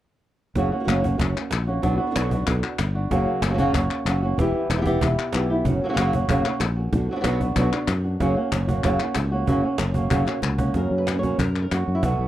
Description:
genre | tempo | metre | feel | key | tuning
flamenco | 188 BPM | 4/4 | straight | F# phrygian dominant | A4 = 440 Hz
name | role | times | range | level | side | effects
flamenco guitar | melody | 0.6-12.3 s | F#2 to C#5 | -24 LUFS | right 1 dB | none
flamenco guitar | stabs | 0.6-12.3 s | B2 to F#4 | -30 LUFS | right 3 dB | tape echo
sustaining fretless electric bass | bass | 0.6-12.3 s | E1 to F#2 | -24 LUFS | left 1 dB | none
cajon | percussion | 0.6-12.2 s | none | -29 LUFS | right 2 dB | none
palmas hand claps | percussion | 0.9-11.9 s | none | -30 LUFS | left 8 dB | none
room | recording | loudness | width
small room ambience | dry, close 1970s-style studio recording | -20 LUFS | side -13 dB against mid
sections
0.6-10.8 A section; 10.8-12.3 B section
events
drum fill 10.3-10.8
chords
0.6 F#; 1.8 Bm; 3.1 F#; 4.4 Em; 5.7 F#; 6.9 Bm; 8.2 F#

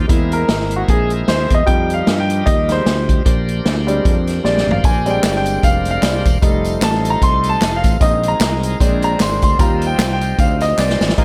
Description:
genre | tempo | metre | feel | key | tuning
uptempo gospel | 152 BPM | 4/4 | swing 57% on 8ths | Eb major | A4 = 438 Hz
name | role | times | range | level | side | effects
bright tonewheel organ | sustained chords | 0.0-11.2 s | Eb3 to Eb5 | -29 LUFS | equal | slow rotary speaker, overdrive
fretless electric bass | bass | 0.0-11.2 s | Fb1 to G2 | -22 LUFS | equal | none
clear concert grand piano | accompaniment | 0.1-11.2 s | Bb2 to C6 | -20 LUFS | equal | none
swinging big-band drum kit | drums | 0.1-11.2 s | hi-hat, kick drum, snare drum, toms | -19 LUFS | equal | none
tambourine and handclaps | percussion | 4.8-11.1 s | none | -32 LUFS | equal | none
room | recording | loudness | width
light reverb, studio reverb | none | -16 LUFS | mono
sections
0.0-11.2 A section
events
grand piano solo 0.0-11.2; drum fill 4.4-4.8, 10.8-11.2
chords
0.1 C7alt; 1.7 F7sus2; 3.3 Bb13; 6.4 F7; 8.0 Bb7sus4; 8.8 Bb9; 9.6 Eb69

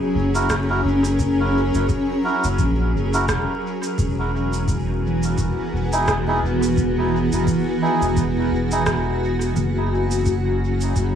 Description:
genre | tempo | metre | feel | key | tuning
ambient dub | 86 BPM | 4/4 | swing 57% on 16ths | F# mixolydian | A4 = 440 Hz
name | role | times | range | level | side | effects
granular cloud pad | sustained chords | 0.0-11.2 s | E3 to A#4 | -22 LUFS | equal | built-in reverb
soft dub sub bass | bass | 0.1-11.1 s | E1 to A#1 | -22 LUFS | equal | none
melodica | stabs | 0.3-8.8 s | D#4 to A#4 | -26 LUFS | right 2 dB | dub echo
electronic shaker and rim click | drums | 0.4-11.1 s | none | -29 LUFS | right 1 dB | dub echo
electronic kick drum | drums | 0.5-11.1 s | none | -27 LUFS | equal | none
room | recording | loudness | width
light reverb | echo-heavy mix, vinyl crackle | -18 LUFS | side -8 dB against mid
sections
0.0-11.2 A section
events
none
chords
0.0 F#7; 4.0 Emaj7; 9.6 F#5

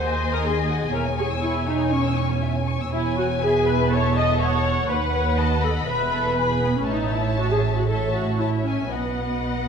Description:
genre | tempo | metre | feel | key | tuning
quick classical-period movement for string orchestra | 121 BPM | 4/4 | straight | E major | A4 = 437 Hz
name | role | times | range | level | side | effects
muted symphonic violin section | melody | 0.0-9.7 s | F#5 to B5 | -30 LUFS | left 7 dB | none
muted symphonic violin section | second line | 0.0-9.7 s | G#4 to E6 | -30 LUFS | left 4 dB | none
muted symphonic viola section | accompaniment | 0.0-9.7 s | B3 to D#5 | -24 LUFS | equal | none
muted symphonic cello section | bass | 0.0-9.7 s | D#2 to B2 | -27 LUFS | right 3 dB | none
muted symphonic double bass section | bass | 0.0-9.7 s | E1 to D#2 | -26 LUFS | right 4 dB | none
room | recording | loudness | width
moderate concert hall reverb, RT60 2.0 s | none | -20 LUFS | side -6 dB against mid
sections
0.0-9.7 A section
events
none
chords
0.0 G#/D#; 0.9 C#m/E; 2.9 E; 3.9 F#m7/E; 4.9 B/D#; 5.9 E; 6.9 A; 8.9 B

